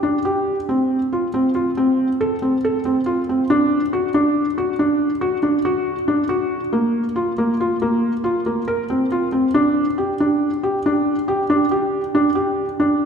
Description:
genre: contemporary instrumental, contemporary.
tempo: 139 BPM.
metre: 7/4.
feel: straight.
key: unclear.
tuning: A4 = 440 Hz.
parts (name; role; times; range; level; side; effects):
felt-muted upright piano; solo; 0.0-13.1 s; Bb3 to Bb4; -17 LUFS; equal; none.
room: wet concert hall reverb, RT60 2.4 s.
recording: recorded in a church or concert hall.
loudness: -17 LUFS.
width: side -6 dB against mid.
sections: 0.0-13.1 A section.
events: none.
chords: none.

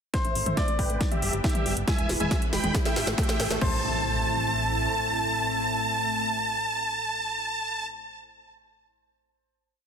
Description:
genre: uplifting trance.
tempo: 138 BPM.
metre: 4/4.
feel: straight.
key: A minor.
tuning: A4 = 443 Hz.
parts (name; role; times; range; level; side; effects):
dense compressed supersaw; melody; 0.1-7.9 s; G4 to B5; -28 LUFS; right 1 dB; sidechain pumping, low-pass filter, digital delay.
bright concert grand piano; second line; 0.1-8.4 s; C5 to D5; -35 LUFS; left 2 dB; dub echo.
analog string pad; sustained chords; 0.1-7.9 s; A2 to B4; -34 LUFS; left 1 dB; ensemble chorus, sidechain pumping.
electronic kick drum; drums; 0.1-3.7 s; none; -27 LUFS; equal; overdrive.
house drum kit; drums; 0.1-3.7 s; crash cymbal, hi-hat, snare drum, toms; -31 LUFS; equal; overdrive, sidechain pumping on hats, sidechain pumping on toms, sidechain pumping on cymbals.
riser and impact; sound effects; 1.8-8.5 s; none; -37 LUFS; equal; none.
wide unison pluck; arpeggios; 0.2-3.8 s; G3 to A3; -36 LUFS; right 1 dB; sidechain pumping, digital delay.
plucky analog bass; bass; 0.2-4.9 s; E1 to A1; -33 LUFS; equal; sidechain pumping.
room: light reverb.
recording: dense, heavily limited modern master.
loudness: -24 LUFS.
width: side -7 dB against mid.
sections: 0.1-3.6 build; 3.6-7.1 final chord.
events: build-up 0.1-3.6; drum fill 0.1-3.6; filter sweep on supersaw synth 0.1-3.6; filter sweep on synth pluck 0.1-3.6; riser 1.8-3.6.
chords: 0.1 Am; 1.0 G; 1.9 E; 2.7 Am.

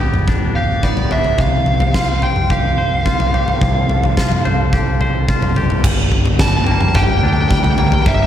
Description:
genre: post-rock.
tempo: 108 BPM.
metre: 4/4.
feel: straight.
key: unclear.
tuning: A4 = 437 Hz.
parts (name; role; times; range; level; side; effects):
dark studio string section; sustained chords; 0.0-8.3 s; D3 to A4; -27 LUFS; equal; none.
twangy electric guitar; arpeggios; 0.0-8.3 s; G2 to C5; -24 LUFS; left 2 dB; spring reverb, slapback echo.
growling picked electric bass; bass; 0.0-8.3 s; D1 to D2; -19 LUFS; equal; overdrive.
huge arena drum kit; drums; 0.0-8.2 s; crash cymbal, kick drum, snare drum, toms; -16 LUFS; equal; none.
fuzz lead guitar; melody; 0.6-8.3 s; D5 to A5; -20 LUFS; right 1 dB; distortion, slapback echo.
room: light reverb, studio ambience.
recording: none.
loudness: -13 LUFS.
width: side -10 dB against mid.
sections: 0.0-5.8 A section; 5.8-8.3 B section.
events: none.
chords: 0.0 G9/D; 1.4 C7sus4; 5.8 Gm.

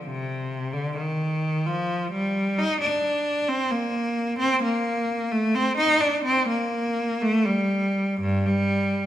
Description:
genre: classical, baroque-style suite movement for unaccompanied cello.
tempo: 57-67 BPM.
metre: 4/4.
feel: rubato.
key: Bb major.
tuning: A4 = 441 Hz.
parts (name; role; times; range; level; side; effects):
clear cello; solo; 0.1-9.1 s; G2 to Eb4; -22 LUFS; equal; none.
room: wet recital hall reverb, RT60 1.8 s.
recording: minimal, uncompressed stereo recording.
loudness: -22 LUFS.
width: side -12 dB against mid.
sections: 0.0-9.1 A section.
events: none.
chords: none.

